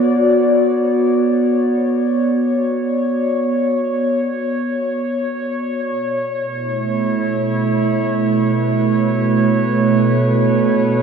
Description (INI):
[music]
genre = ambient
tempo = free time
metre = none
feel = none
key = B minor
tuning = A4 = 435 Hz
[part]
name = warbly tape-like pad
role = solo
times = 0.0-11.0 s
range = B2 to D5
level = -15 LUFS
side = right 1 dB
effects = chorus, built-in reverb, analog delay
[sound]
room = wet plate reverb, RT60 3.1 s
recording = echo-heavy mix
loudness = -15 LUFS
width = side -6 dB against mid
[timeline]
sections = 0.0-11.0 A section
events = none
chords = 0.0 Bmadd9; 5.9 A/B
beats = free time